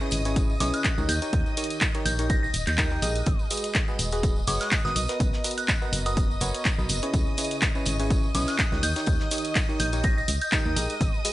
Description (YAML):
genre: piano house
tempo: 124 BPM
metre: 4/4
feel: swing 55% on 16ths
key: unclear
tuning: A4 = 440 Hz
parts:
  - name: string machine, violins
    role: sustained chords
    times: 0.0-11.3 s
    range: D#5 to D#6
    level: -35 LUFS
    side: equal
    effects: ensemble chorus, sidechain pumping
  - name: barking FM electric piano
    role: riff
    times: 0.0-11.3 s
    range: C#3 to G5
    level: -31 LUFS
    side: equal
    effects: chorus, cassette tape, sidechain pumping, analog delay
  - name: tambourine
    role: percussion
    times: 0.0-11.3 s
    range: none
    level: -36 LUFS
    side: right 2 dB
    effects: none
  - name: solid FM bass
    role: bass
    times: 0.1-11.1 s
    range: D#1 to D#2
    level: -29 LUFS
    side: equal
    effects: sidechain pumping
  - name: punchy analog drum machine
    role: drums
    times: 0.1-11.3 s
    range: handclaps, hi-hat, shaker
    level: -28 LUFS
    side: equal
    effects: none
  - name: electronic kick drum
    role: drums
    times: 0.4-11.1 s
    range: none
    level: -26 LUFS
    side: equal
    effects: none
  - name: glassy synth bell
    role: melody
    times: 0.6-11.1 s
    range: D#6 to A#6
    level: -32 LUFS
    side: equal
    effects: chorus, analog delay
  - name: tight metal drum kit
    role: drums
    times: 3.3-11.3 s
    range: hi-hat, snare drum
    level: -41 LUFS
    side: right 2 dB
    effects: none
room: little or no reverb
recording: dry, gritty hardware recording, nothing above 10.7 kHz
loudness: -22 LUFS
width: side -16 dB against mid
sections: 0.0-11.3 A section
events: none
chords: 0.0 C#m7; 1.1 D#7; 3.3 G#m7; 5.0 Bmaj7; 7.1 C#m7; 8.8 D#7